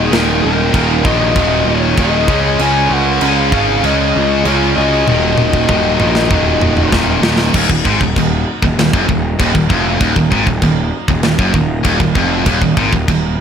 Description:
heavy metal; 97 BPM; 4/4; straight; Eb minor; A4 = 438 Hz
bluesy overdriven lead guitar; melody; 0.0-6.9 s; Ab4 to Ab5; -18 LUFS; left 3 dB; distortion, ping-pong delay
high-gain lead guitar; second line; 0.0-6.9 s; Cb4 to Db5; -25 LUFS; right 8 dB; distortion
pipe organ, plenum; sustained chords; 0.0-13.4 s; Db3 to Bb4; -26 LUFS; equal
heavy high-gain guitar; riff; 0.0-13.3 s; Eb2 to Db4; -17 LUFS; left 9 dB; distortion
heavy high-gain guitar; riff; 0.0-13.3 s; Eb2 to Db4; -18 LUFS; right 14 dB; distortion
fuzz picked electric bass; bass; 0.0-13.4 s; Eb1 to Db2; -17 LUFS; equal; overdrive
tight metal drum kit; drums; 0.1-13.2 s; china cymbal, crash cymbal, kick drum, snare drum, toms; -17 LUFS; right 1 dB
studio reverb; -11 LUFS; side -8 dB against mid
0.0-7.5 A section; 7.5-13.4 B section
half time 0.0-7.5; drum fill 5.1-7.5
0.0 Ebm; 2.3 Db; 5.1 Ebm

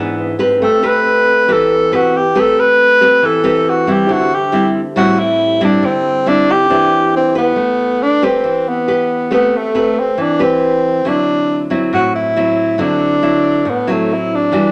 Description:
bossa nova; 138 BPM; 4/4; straight; A4 = 440 Hz
breathy tenor saxophone; melody; 0.0-14.7 s; A3 to B4; -16 LUFS; equal
nylon-string guitar; accompaniment; 0.0-14.7 s; G#2 to B4; -18 LUFS; equal
tine electric piano; accompaniment; 0.0-7.6 s; G#3 to G5; -29 LUFS; equal
light reverb; -14 LUFS; mono
0.0-7.6 A section; 7.6-14.7 B section
0.0 E7/G#; 0.6 Am9; 4.1 D9sus4; 6.7 Em7; 7.6 Am9; 11.0 D9

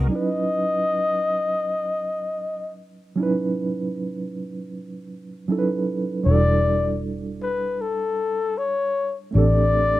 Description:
R&B; 78 BPM; 4/4; swing 54% on 16ths; C# minor; A4 = 440 Hz
reed electric piano; accompaniment; 0.0-10.0 s; F#3 to B4; -26 LUFS; right 3 dB; fast tremolo
vintage muted fingered electric bass; bass; 0.0-0.1, 6.3-10.0 s; E1 to A1; -20 LUFS; equal
breathy flugelhorn; melody; 0.1-10.0 s; A4 to D#5; -22 LUFS; left 3 dB; slapback echo
studio reverb; dry, close 1970s-style studio recording; -21 LUFS; side -15 dB against mid
0.1-10.0 A section
0.1 C#m11; 6.3 Em11; 9.3 Am7

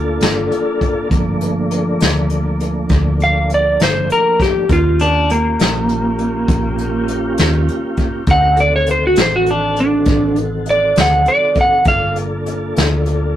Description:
slow blues; 67 BPM (dotted quarters); 12/8; straight; G minor; A4 = 436 Hz
tonewheel organ; sustained chords; 0.0-13.4 s; Eb3 to Bb4; -21 LUFS; equal; chorus vibrato, slow rotary speaker
vintage muted fingered electric bass; bass; 0.0-13.4 s; G1 to Eb2; -19 LUFS; equal
vintage brush drum kit; drums; 0.2-13.2 s; hi-hat, kick drum, snare drum; -18 LUFS; equal
electric slide guitar; melody; 3.2-12.2 s; Bb3 to F#5; -14 LUFS; right 1 dB
light reverb; rough rehearsal-room recording, tube saturation; -13 LUFS; side -11 dB against mid
0.0-13.4 A section
electric slide guitar solo 0.0-13.4
0.0 Gm7; 4.7 Eb7; 8.3 D7b9; 11.9 Gm7

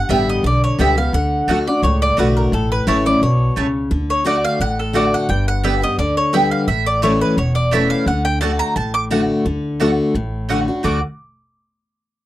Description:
bluegrass; 173 BPM; 4/4; straight; D major; A4 = 439 Hz
mandolin; melody; 0.0-11.0 s; A4 to D6; -20 LUFS; right 1 dB
picked steel-string acoustic guitar; accompaniment; 0.0-11.0 s; G2 to G4; -19 LUFS; left 2 dB
mandolin; stabs; 0.1-11.0 s; A3 to A5; -21 LUFS; right 4 dB
upright bass; bass; 0.1-11.0 s; E1 to D2; -20 LUFS; equal
little or no reverb; dry, close 1970s-style studio recording; -15 LUFS; side -15 dB against mid
0.0-9.5 A section; 9.5-10.8 B section; 10.8-12.2 C section
0.0 G; 1.1 D; 2.5 A; 3.9 D; 5.3 G; 6.7 A; 8.1 D

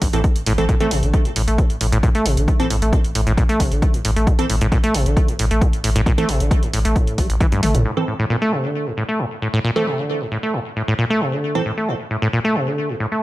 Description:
driving peak-time techno; 134 BPM; 4/4; straight; A phrygian; A4 = 440 Hz
acid bass, saw; riff; 0.0-13.2 s; A1 to A3; -20 LUFS; equal; sidechain pumping, digital delay
warm sub bass; bass; 0.0-7.9 s; A1; -21 LUFS; equal; tube saturation, sidechain pumping, low-pass filter
electronic kick drum; drums; 0.0-7.5 s; -18 LUFS; equal
punchy analog drum machine; drums; 0.0-7.8 s; hi-hat, toms; -26 LUFS; right 1 dB
wavetable chord stab; stabs; 0.1-11.6 s; E3 to A4; -25 LUFS; right 2 dB; sidechain pumping, digital delay
light reverb; -16 LUFS; side -17 dB against mid
0.0-7.9 A section; 7.9-13.2 B section
drum fill 7.5-7.9
0.0 Am

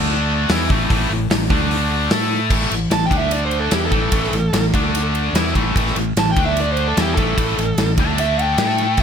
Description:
hard rock; 148 BPM; 4/4; straight; A4 = 440 Hz
tight distorted guitar; riff; 0.0-9.0 s; A2 to A4; -20 LUFS; left 2 dB; distortion
fingered electric bass; bass; 0.0-9.0 s; A1 to A2; -22 LUFS; equal
gated 80s drum kit; drums; 0.5-9.0 s; crash cymbal, hi-hat, kick drum, ride cymbal, snare drum; -20 LUFS; equal
smooth overdriven lead guitar; melody; 2.9-9.0 s; G4 to A5; -22 LUFS; right 2 dB; digital delay
little or no reverb; -15 LUFS; side -7 dB against mid
0.0-2.5 A section; 2.5-9.0 B section
lead electric guitar solo 2.5-9.0
0.0 D5; 0.5 A5; 1.5 D5; 2.1 A5; 3.1 D5; 3.7 A5; 4.7 D5; 5.4 A5; 6.4 D5; 7.0 A5; 8.0 D5

